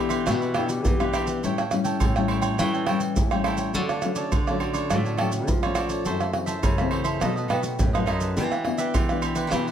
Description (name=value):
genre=samba and choro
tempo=104 BPM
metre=4/4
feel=straight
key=D major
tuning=A4 = 439 Hz
part: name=mellow clarinet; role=second line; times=0.0-1.9 s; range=E4 to G4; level=-30 LUFS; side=left 6 dB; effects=none
part: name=cavaquinho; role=accompaniment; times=0.0-9.7 s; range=D4 to G5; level=-31 LUFS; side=right 4 dB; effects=none
part: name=nylon-string guitar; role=accompaniment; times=0.0-9.7 s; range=F#2 to G4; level=-28 LUFS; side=left 4 dB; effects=none
part: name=nylon-string guitar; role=bass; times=0.0-9.7 s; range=F#2 to F#3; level=-29 LUFS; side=equal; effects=none
part: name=agogo bells, maracas, pandeiro, surdo and tamborim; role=percussion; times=0.1-9.7 s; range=none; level=-25 LUFS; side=right 2 dB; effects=none
room=moderate large studio reverb, RT60 1.2 s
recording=none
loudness=-22 LUFS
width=side -9 dB against mid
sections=0.0-9.7 A section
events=none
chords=0.0 Em7; 1.4 A7; 3.7 Dmaj7; 6.1 F#m7b5; 7.2 B7; 8.4 Em7